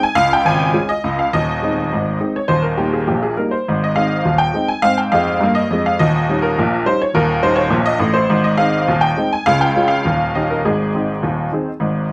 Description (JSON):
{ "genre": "ragtime piano", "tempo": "103 BPM", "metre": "2/4", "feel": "straight", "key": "Ab major", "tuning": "A4 = 440 Hz", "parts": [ { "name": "honky-tonk upright piano", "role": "solo", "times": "0.0-12.1 s", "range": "Eb1 to Ab5", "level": "-17 LUFS", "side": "equal", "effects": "none" } ], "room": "light reverb", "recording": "close, detailed microphones", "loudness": "-17 LUFS", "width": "mono", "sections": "0.0-12.1 A section", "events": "none", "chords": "0.1 Db; 1.3 Ab/Eb; 2.5 Eb; 3.7 Ab; 6.0 Eb7; 8.3 Ab; 9.5 Db; 10.0 Eb7; 10.6 Ab", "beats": "| 0.15 0.73 | 1.32 1.91 | 2.49 3.08 | 3.66 4.24 | 4.83 5.41 | 5.99 6.56 | 7.14 7.72 | 8.30 8.88 | 9.46 10.04 | 10.63 11.22 | 11.80" }